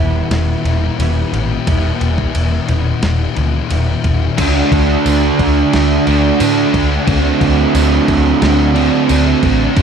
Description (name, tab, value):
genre	rock, shoegaze and dream pop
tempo	89 BPM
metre	4/4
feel	straight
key	D major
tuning	A4 = 435 Hz
part	overdriven electric guitar	riff	0.0-9.8 s	G2 to F#4	-17 LUFS	right 10 dB	reverse reverb
part	thick fuzz guitar	riff	0.0-9.8 s	E2 to D4	-18 LUFS	left 9 dB	distortion, ensemble chorus
part	vintage muted picked electric bass	bass	0.0-9.8 s	E1 to A2	-16 LUFS	equal	none
part	crisp 8-bit digital drum machine	drums	0.3-9.8 s	crash cymbal, kick drum, ride cymbal, snare drum	-21 LUFS	equal	none
part	biting overdriven guitar	riff	4.4-9.8 s	G2 to D4	-19 LUFS	right 1 dB	none
part	tambourine	percussion	5.1-9.3 s	none	-31 LUFS	right 12 dB	none
room	light reverb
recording	none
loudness	-11 LUFS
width	side -7 dB against mid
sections	0.0-4.4 A section; 4.4-9.8 B section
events	none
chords	0.0 Em; 4.4 D; 7.1 D7